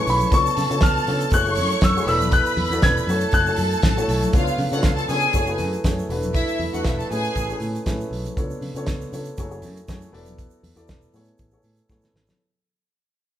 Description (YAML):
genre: disco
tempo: 119 BPM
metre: 4/4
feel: straight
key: F# minor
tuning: A4 = 441 Hz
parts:
  - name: warm studio string section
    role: second line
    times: 0.0-7.6 s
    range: E4 to C#6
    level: -25 LUFS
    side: equal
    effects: none
  - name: dark baby grand piano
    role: accompaniment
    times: 0.0-12.4 s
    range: A3 to D5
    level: -27 LUFS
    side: left 1 dB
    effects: none
  - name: clear baby grand piano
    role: melody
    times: 0.1-4.0 s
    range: B5 to G#6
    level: -23 LUFS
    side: left 2 dB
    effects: none
  - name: fingered electric bass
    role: bass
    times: 0.1-12.3 s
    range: E1 to C#3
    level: -26 LUFS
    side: equal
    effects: none
  - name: damped 70s drum kit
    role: drums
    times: 0.1-12.4 s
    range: hi-hat, kick drum, snare drum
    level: -23 LUFS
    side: equal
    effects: none
  - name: egg shaker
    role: percussion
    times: 0.1-12.4 s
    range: none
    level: -41 LUFS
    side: right 8 dB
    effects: none
  - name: congas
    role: percussion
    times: 0.2-12.4 s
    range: none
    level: -34 LUFS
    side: left 4 dB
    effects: none
room: moderate large studio reverb, RT60 1.0 s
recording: band playing live in one room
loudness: -18 LUFS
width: side -11 dB against mid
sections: 0.0-4.3 A section; 4.3-12.4 B section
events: fade-out 4.3-12.4; drum fill 11.9-12.4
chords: 0.3 C#7b9b13; 1.3 F#m9; 2.1 E9sus4; 3.1 F#m7; 4.3 C#7b9b13; 5.3 F#m9; 6.1 E9sus4; 7.1 Amaj9; 8.4 C#7b9b13; 9.4 F#m9; 10.1 E9sus4; 11.1 Amaj9